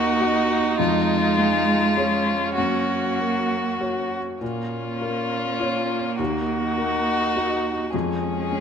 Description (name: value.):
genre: neoclassical piano and strings.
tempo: 101 BPM.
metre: 3/4.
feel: uneven beats, rubato.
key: Eb minor.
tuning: A4 = 440 Hz.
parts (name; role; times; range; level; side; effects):
rich violin; melody; 0.0-8.6 s; F4 to Ab4; -24 LUFS; left 4 dB; none.
rich cello; second line; 0.0-8.6 s; Ab3 to Bb3; -27 LUFS; right 6 dB; none.
clear viola; accompaniment; 0.0-8.6 s; Db4 to Eb4; -28 LUFS; right 5 dB; none.
felt-muted upright piano; accompaniment; 0.0-8.6 s; Eb2 to Eb5; -26 LUFS; left 3 dB; none.
room: moderate scoring stage reverb, RT60 1.8 s.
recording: minimal, uncompressed stereo recording, lossy compression artefacts.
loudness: -20 LUFS.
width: side -7 dB against mid.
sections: 0.0-8.6 A section.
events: none.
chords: 0.0 Ebm; 0.8 Db/F; 2.6 Gb; 4.4 Bbm; 6.2 Ebm; 7.9 Db/F.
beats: 0.20 | 0.78 1.36 1.95 | 2.57 3.19 3.80 | 4.41 5.01 5.61 | 6.19 6.78 7.36 | 7.93 8.52.